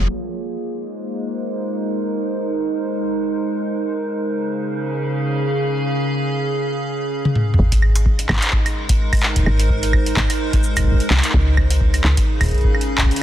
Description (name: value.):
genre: IDM.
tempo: 128 BPM.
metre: 4/4.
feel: swing 56% on 16ths.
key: Ab major.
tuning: A4 = 441 Hz.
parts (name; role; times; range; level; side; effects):
icy glass pad; sustained chords; 0.0-13.2 s; Db3 to F5; -22 LUFS; right 1 dB; chorus, built-in reverb, sidechain pumping.
woody FM bass; bass; 0.0-0.1, 7.6-12.1 s; Ab1 to Db2; -17 LUFS; equal; none.
booming analog drum machine; drums; 7.3-13.2 s; claves, handclaps, hi-hat, shaker, toms; -21 LUFS; equal; low-pass filter on hats, studio reverb, low-pass filter on snare, low-pass filter on perc, low-pass filter on toms.
electronic kick drum; drums; 7.7-13.1 s; none; -18 LUFS; equal; studio reverb.
room: light reverb, digital ambience.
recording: dense, heavily limited modern master, low-pass filter.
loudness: -17 LUFS.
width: side -12 dB against mid.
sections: 0.1-7.6 A section; 7.6-13.2 B section.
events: filter sweep on drum 0.1-7.6; filter sweep 0.1-7.6; drum fill 7.2-7.6.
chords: 0.1 Abadd9; 3.8 Db; 7.6 Abadd9; 11.3 Db.